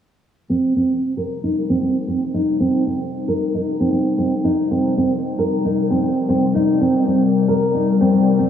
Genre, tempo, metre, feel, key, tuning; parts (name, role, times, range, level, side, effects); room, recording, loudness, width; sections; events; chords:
organic downtempo; 114 BPM; 4/4; swing 56% on 16ths; C minor; A4 = 440 Hz
warm analog pad; sustained chords; 0.5-8.5 s; C3 to D5; -20 LUFS; left 3 dB; chorus
nylon-string guitar; arpeggios; 0.5-8.5 s; C4 to Bb4; -18 LUFS; right 1 dB; vintage 12-bit sampler grit, low-pass filter, diffuse ambient delay
cabasa; drums; 0.5-8.5 s; -69 LUFS; right 3 dB
wet lush hall reverb, RT60 1.6 s, digital ambience; dreamy mix soaked in reverb, low-pass filter, small room ambience; -16 LUFS; side -9 dB against mid
0.5-8.5 A section
filter sweep on nylon-string guitar 0.5-8.5; filter sweep on analog synth pad 0.5-8.5
0.5 Cm9